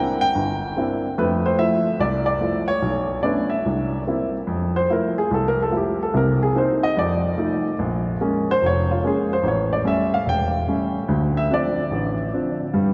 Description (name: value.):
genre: solo jazz.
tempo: 145 BPM.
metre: 4/4.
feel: swing 66% on 8ths.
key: F major from 4.5 s.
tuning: A4 = 441 Hz.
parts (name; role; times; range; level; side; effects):
warm baby grand piano; solo; 0.0-12.9 s; E1 to G5; -21 LUFS; equal; none.
room: wet cathedral reverb, RT60 5.0 s.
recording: in a vast, echoing space, faint mains hum.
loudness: -22 LUFS.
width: mono.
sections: 0.0-4.5 A section; 4.5-12.9 B section.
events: grand piano solo 4.5-12.9.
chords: 0.0 C9; 1.2 Fmaj7; 2.8 Bm9; 3.7 C7; 4.5 Fmaj7; 6.1 Cm7; 7.0 F7; 7.8 Bbm7; 9.4 A7; 11.1 Dm7.